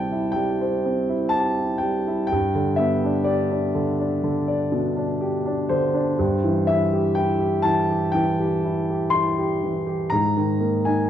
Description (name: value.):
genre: classical, lyrical solo piano.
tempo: 61 BPM.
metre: 4/4.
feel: rubato.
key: C major.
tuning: A4 = 437 Hz.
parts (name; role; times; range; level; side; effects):
dark concert grand piano; solo; 0.0-11.1 s; G2 to C6; -20 LUFS; equal; none.
room: wet recital hall reverb, RT60 1.6 s.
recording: dark, warm production.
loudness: -20 LUFS.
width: side -10 dB against mid.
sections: 0.0-11.1 A section.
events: none.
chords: 0.0 C; 2.3 G; 6.2 C/G; 10.1 Absus2.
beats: 0.36 1.34 | 2.32 3.28 4.24 5.21 | 6.19 7.16 8.14 9.13 | 10.12.